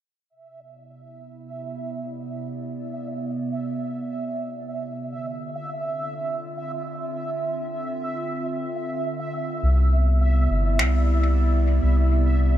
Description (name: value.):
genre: ambient dub.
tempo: free time.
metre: none.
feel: none.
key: unclear.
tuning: A4 = 438 Hz.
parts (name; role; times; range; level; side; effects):
warbly tape-like pad; sustained chords; 1.2-12.6 s; C3 to E5; -30 LUFS; right 2 dB; chorus, built-in reverb.
bubbling stepped-filter texture; texture; 0.6-12.6 s; E5; -31 LUFS; right 2 dB; chorus, built-in reverb.
soft dub sub bass; bass; 9.6-12.6 s; G1 to C2; -18 LUFS; equal; none.
electronic finger snaps; drums; 10.8-10.9 s; none; -27 LUFS; left 1 dB; dub echo.
room: little or no reverb.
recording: none.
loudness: -22 LUFS.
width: side -12 dB against mid.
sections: 0.3-12.6 A section.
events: fade-in on ambient pad 0.3-12.6.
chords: 0.3 Cmaj9; 5.0 Dm9; 9.6 Cmaj9.